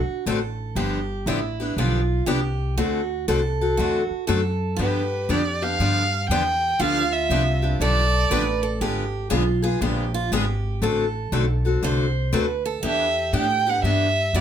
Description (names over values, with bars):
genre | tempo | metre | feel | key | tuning
acoustic string swing (jazz manouche) | 119 BPM | 4/4 | swing 65% on 8ths | unclear | A4 = 439 Hz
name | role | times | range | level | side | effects
picked steel-string acoustic guitar | second line | 0.0-14.4 s | E4 to C5 | -28 LUFS | right 6 dB | none
upright bass | bass | 0.0-14.4 s | G1 to A2 | -24 LUFS | equal | none
picked steel-string acoustic guitar | accompaniment | 0.3-14.4 s | D3 to A4 | -25 LUFS | left 3 dB | none
warm violin | melody | 4.8-8.6, 12.9-14.4 s | B4 to G5 | -22 LUFS | right 2 dB | plate reverb
room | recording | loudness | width
light reverb | none | -20 LUFS | side -9 dB against mid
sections
0.0-14.4 A section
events
none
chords
0.0 D7; 0.8 G7; 2.8 D7; 4.8 G7; 8.8 G#dim7; 10.8 D7; 12.8 Em7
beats
0.26 | 0.77 1.27 1.77 2.27 | 2.78 3.28 3.78 4.29 | 4.79 5.29 5.79 6.30 | 6.80 7.30 7.80 8.31 | 8.81 9.31 9.82 10.32 | 10.82 11.33 11.83 12.33 | 12.84 13.34 13.84 14.34